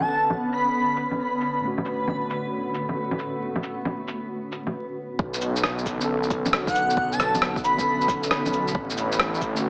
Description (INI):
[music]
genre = future garage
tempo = 135 BPM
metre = 4/4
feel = swing 66% on 16ths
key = B minor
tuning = A4 = 440 Hz
[part]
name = airy dreamy lead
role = melody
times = 0.0-1.0, 6.7-8.1 s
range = F#5 to B5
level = -28 LUFS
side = equal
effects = chorus, tape echo
[part]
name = mellow tine electric piano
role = accompaniment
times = 0.0-9.7 s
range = A2 to A4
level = -34 LUFS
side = equal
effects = vintage 12-bit sampler grit, sidechain pumping, low-pass filter, tape echo
[part]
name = granular cloud pad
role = sustained chords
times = 0.0-9.7 s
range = A2 to B4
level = -35 LUFS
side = equal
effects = built-in reverb, vintage 12-bit sampler grit, sidechain pumping
[part]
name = electronic bongos, cabasa, shaker and rim click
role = drums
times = 0.0-9.6 s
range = none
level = -29 LUFS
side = equal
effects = low-pass filter on perc, low-pass filter on snare, low-pass filter on room
[part]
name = backwards swelling texture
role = texture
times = 0.0-4.8 s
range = B3 to B4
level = -36 LUFS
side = equal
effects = built-in reverb
[part]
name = swelling detuned saw bass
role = bass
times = 5.2-9.7 s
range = A1 to B1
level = -32 LUFS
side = equal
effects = sidechain pumping
[part]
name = electronic kick drum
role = drums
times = 5.2-9.5 s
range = none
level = -32 LUFS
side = equal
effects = overdrive
[sound]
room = wet digital room reverb, RT60 1.2 s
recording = heavily compressed radio sound, multiband compression, vinyl crackle, small speaker sound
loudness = -25 LUFS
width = mono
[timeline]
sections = 0.0-5.2 A section; 5.2-9.7 B section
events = filter sweep on tine electric piano 0.0-5.2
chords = 0.0 Bm9; 1.6 Dmaj7/A; 5.2 Bm9; 8.8 Dmaj7/A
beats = 0.31 0.75 1.20 | 1.64 2.08 2.53 2.97 | 3.42 3.86 4.31 4.75 | 5.20 5.64 6.08 6.53 | 6.97 7.42 7.86 8.31 | 8.75 9.20 9.64